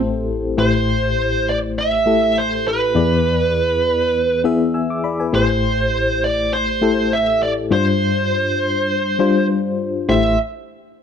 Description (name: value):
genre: pop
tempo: 101 BPM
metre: 4/4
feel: swing 55% on 16ths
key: A minor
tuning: A4 = 441 Hz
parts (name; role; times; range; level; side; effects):
- FM electric piano with tremolo; accompaniment; 0.0-10.4 s; A1 to E6; -18 LUFS; left 4 dB; none
- bluesy overdriven lead guitar; melody; 0.6-10.4 s; B4 to E5; -18 LUFS; right 3 dB; distortion, slapback echo
room: little or no reverb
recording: dry, close 1970s-style studio recording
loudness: -15 LUFS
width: side -8 dB against mid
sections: 0.6-10.1 A section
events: none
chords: 0.0 Am7; 3.0 E7; 5.3 Am7; 7.7 G7sus4; 10.1 Am7